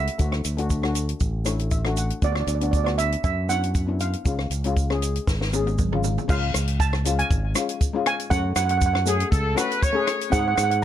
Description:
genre	calypso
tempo	118 BPM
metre	4/4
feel	straight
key	unclear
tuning	A4 = 439 Hz
part	steel pan	melody	0.0-10.8 s	D5 to A5	-26 LUFS	right 6 dB	ping-pong delay
part	steel pan	accompaniment	0.0-10.8 s	G#3 to F#5	-29 LUFS	left 6 dB	none
part	modern bright fingered electric bass	bass	0.0-10.8 s	G#1 to G#2	-24 LUFS	equal	none
part	compact cocktail drum kit	drums	0.1-10.8 s	crash cymbal, hi-hat, kick drum, rim click, snare drum, toms	-25 LUFS	equal	none
part	egg shaker	percussion	0.2-10.7 s	none	-34 LUFS	right 12 dB	none
part	clear horn section	second line	9.1-10.2 s	G#4 to C#5	-26 LUFS	left 2 dB	ping-pong delay
room	light reverb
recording	dark, warm production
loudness	-21 LUFS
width	side -11 dB against mid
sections	0.0-6.3 A section; 6.3-10.8 B section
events	steel pan fill 1.2-2.2; drum fill 5.3-6.3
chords	0.2 D; 2.2 Bm/D; 4.3 C#; 8.3 F#madd9; 10.3 G#7

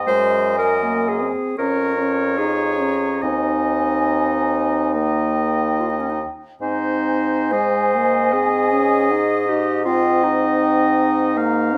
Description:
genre	classical, slow romantic movement for wind quintet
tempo	62-81 BPM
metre	4/4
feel	rubato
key	Ab major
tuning	A4 = 436 Hz
part	mellow concert flute	melody	0.0-11.8 s	F5 to Bb5	-27 LUFS	equal	none
part	clear oboe	second line	0.0-11.8 s	C5 to F5	-26 LUFS	equal	none
part	clear bassoon	bass	0.0-11.8 s	Eb2 to Ab2	-27 LUFS	equal	none
part	clear clarinet	accompaniment	0.1-11.8 s	Db4 to C5	-23 LUFS	equal	none
part	warm French horn	accompaniment	0.1-11.8 s	Ab3 to Eb4	-27 LUFS	equal	none
room	moderate large studio reverb, RT60 1.2 s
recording	none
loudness	-19 LUFS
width	mono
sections	0.0-11.8 A section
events	none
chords	0.1 Ab7/Gb; 1.6 Db/F; 3.2 Ab/Eb; 4.9 Eb; 6.6 Ab; 9.9 Eb/Ab

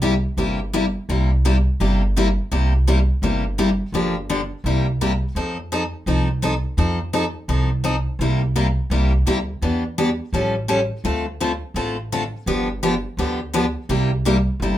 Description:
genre	acoustic string swing (jazz manouche)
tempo	169 BPM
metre	4/4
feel	swing 61% on 8ths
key	C mixolydian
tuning	A4 = 437 Hz
part	picked steel-string acoustic guitar	accompaniment	0.0-14.8 s	C3 to A4	-21 LUFS	left 1 dB	none
part	upright bass	bass	0.0-14.8 s	G1 to F2	-21 LUFS	right 1 dB	none
room	moderate small room reverb, RT60 0.5 s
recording	minimal, uncompressed stereo recording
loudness	-18 LUFS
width	side -12 dB against mid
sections	0.0-14.8 A section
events	none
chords	0.0 C7; 3.9 Gm7; 4.6 C7; 5.4 F7; 8.2 C7; 9.6 Em7; 10.3 Aaug7; 11.0 Dm7; 12.5 G7; 13.9 C7

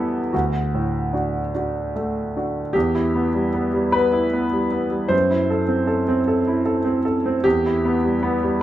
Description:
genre	neoclassical minimalist piano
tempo	50 BPM (dotted quarters)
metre	6/8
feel	rubato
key	E minor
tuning	A4 = 440 Hz
part	warm grand piano	solo	0.0-8.6 s	D2 to C5	-18 LUFS	equal	none
room	moderate recital hall reverb, RT60 1.4 s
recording	none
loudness	-18 LUFS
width	side -13 dB against mid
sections	0.0-2.7 A section; 2.7-8.6 B section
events	none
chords	0.3 D; 2.7 Em; 5.1 F#m7b5; 7.4 Em

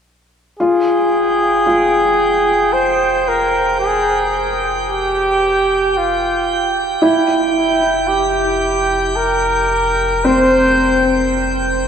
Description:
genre	ambient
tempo	56 BPM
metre	3/4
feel	straight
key	F harmonic minor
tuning	A4 = 438 Hz
part	clear flugelhorn	melody	0.6-11.3 s	E4 to C5	-16 LUFS	equal	shimmer reverb, tape echo
part	felt-muted upright piano	arpeggios	0.6-11.9 s	C4 to F4	-18 LUFS	left 1 dB	shimmer reverb, tape echo
part	warm sub bass	bass	0.6-11.9 s	F1	-29 LUFS	equal	none
part	drifting glass-harmonics texture	texture	0.9-11.9 s	G5 to G6	-21 LUFS	right 4 dB	chorus, built-in reverb, shimmer reverb
room	wet cathedral reverb, RT60 6.0 s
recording	faint mains hum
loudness	-13 LUFS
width	side -7 dB against mid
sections	0.6-11.9 A section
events	fade-in on sub bass 0.6-11.9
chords	0.6 Fm; 7.0 C7/F

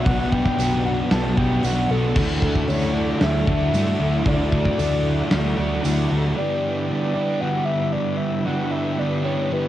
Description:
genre	rock, shoegaze and dream pop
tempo	114 BPM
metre	4/4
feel	straight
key	unclear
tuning	A4 = 440 Hz
part	soft octave-layered synth lead	melody	0.0-9.7 s	A4 to A5	-26 LUFS	equal	chorus, phaser, cassette tape, tape echo
part	ensemble organ-string	sustained chords	0.0-9.7 s	A4 to D6	-36 LUFS	equal	ensemble chorus, cassette tape
part	electric guitar through a small old amp	arpeggios	0.0-9.7 s	E3 to F#4	-33 LUFS	right 3 dB	lush chorus, cassette tape, tape echo
part	overdriven electric guitar	riff	0.0-9.7 s	G2 to G4	-27 LUFS	right 6 dB	reverse reverb, cassette tape
part	sludgy distorted guitar	riff	0.0-6.4 s	B2 to D4	-30 LUFS	equal	none
part	thick fuzz guitar	riff	0.0-9.7 s	G2 to D4	-26 LUFS	left 6 dB	distortion, wide subtle chorus, cassette tape
part	hollow-body short-scale picked electric bass	bass	0.1-6.3 s	B1 to G2	-24 LUFS	equal	none
part	big rock drum kit	drums	0.1-6.0 s	crash cymbal, hi-hat, kick drum, snare drum	-25 LUFS	equal	cassette tape
part	tambourine	percussion	0.6-6.0 s	none	-37 LUFS	right 10 dB	none
room	light reverb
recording	home recording on cassette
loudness	-19 LUFS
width	side -13 dB against mid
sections	0.0-6.4 A section; 6.4-9.7 B section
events	none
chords	0.0 Bm; 2.2 Dadd9; 6.4 G6

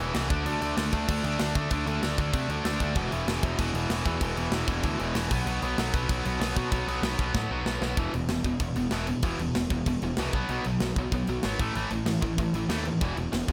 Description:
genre	punk rock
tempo	191 BPM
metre	4/4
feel	straight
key	unclear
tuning	A4 = 440 Hz
part	tight distorted guitar	riff	0.0-13.5 s	E2 to D4	-31 LUFS	equal	distortion
part	fuzz picked electric bass	bass	0.0-13.5 s	E1 to D3	-34 LUFS	equal	overdrive
part	tight metal drum kit	drums	0.1-13.5 s	crash cymbal, kick drum, snare drum	-34 LUFS	equal	none
room	little or no reverb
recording	none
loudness	-28 LUFS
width	mono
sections	0.0-8.0 A section; 8.0-13.5 B section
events	drum fill 7.3-8.0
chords	0.3 D5; 3.0 E5; 5.3 B5; 8.0 E5; 10.3 B5; 11.6 A5; 13.0 E5

